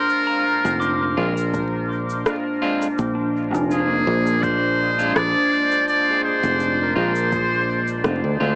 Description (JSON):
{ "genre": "ambient dub", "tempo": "83 BPM", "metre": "4/4", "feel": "swing 54% on 16ths", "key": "Bb mixolydian", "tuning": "A4 = 438 Hz", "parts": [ { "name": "trumpet with metal mute", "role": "melody", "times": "0.0-8.0 s", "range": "Ab4 to D5", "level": "-24 LUFS", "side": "equal", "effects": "cassette tape, dub echo" }, { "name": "warbly tape-like pad", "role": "sustained chords", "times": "0.0-8.6 s", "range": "Bb2 to C5", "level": "-29 LUFS", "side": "equal", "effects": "chorus, built-in reverb" }, { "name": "pedal steel guitar", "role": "arpeggios", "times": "0.0-8.6 s", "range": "Bb3 to D6", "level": "-30 LUFS", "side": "equal", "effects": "dub echo" }, { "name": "electronic cabasa and rim click", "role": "drums", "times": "0.1-8.2 s", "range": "none", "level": "-27 LUFS", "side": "equal", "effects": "overdrive, studio reverb, cassette tape, dub echo" }, { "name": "fingered electric bass", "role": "bass", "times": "0.6-8.6 s", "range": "F1 to D2", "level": "-26 LUFS", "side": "equal", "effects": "none" }, { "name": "clean electric guitar", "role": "stabs", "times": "1.2-8.6 s", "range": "Ab3 to F4", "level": "-34 LUFS", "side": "equal", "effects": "tremolo, dub echo" }, { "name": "electronic kick drum", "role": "drums", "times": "1.5-7.5 s", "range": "none", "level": "-33 LUFS", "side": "equal", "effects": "overdrive, studio reverb, cassette tape" } ], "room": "moderate studio ambience, RT60 0.5 s", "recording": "home recording on cassette, vinyl crackle, small speaker sound", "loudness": "-21 LUFS", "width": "mono", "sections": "0.0-8.6 A section", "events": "none", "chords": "0.0 Bb9", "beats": "| 0.09 0.82 1.54 2.26 | 2.98 3.71 4.43 5.15 | 5.88 6.60 7.32 8.04" }